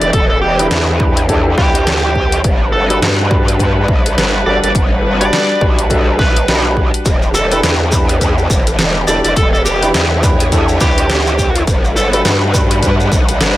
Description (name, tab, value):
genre	glitch hop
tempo	104 BPM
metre	4/4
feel	swing 59% on 16ths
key	E dorian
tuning	A4 = 440 Hz
part	smooth overdriven lead guitar	melody	0.0-12.2 s	G4 to D5	-19 LUFS	right 1 dB	tape echo
part	rich chamber string section	sustained chords	0.0-13.6 s	E3 to F#5	-21 LUFS	equal	sidechain pumping
part	warm baby grand piano	stabs	0.0-13.6 s	D4 to B4	-19 LUFS	equal	vintage 12-bit sampler grit, sidechain pumping, tape echo
part	growl bass	bass	0.0-13.6 s	E1 to G2	-15 LUFS	equal	chorus, tube saturation
part	dubstep drum kit	drums	0.0-13.5 s	hi-hat, rim click, snare drum	-18 LUFS	equal	none
part	electronic kick drum	drums	0.1-13.3 s	none	-15 LUFS	equal	none
part	shekere	percussion	7.1-13.5 s	none	-24 LUFS	left 1 dB	none
room	light reverb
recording	vinyl crackle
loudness	-10 LUFS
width	side -15 dB against mid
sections	0.0-13.6 A section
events	none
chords	0.0 Em7; 2.4 Gmaj7; 7.1 Em7; 11.7 Gmaj7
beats	| 0.13 0.71 1.29 1.86 | 2.44 3.02 3.60 4.17 | 4.75 5.33 5.90 6.48 | 7.06 7.63 8.21 8.79 | 9.37 9.94 10.52 11.10 | 11.67 12.25 12.83 13.40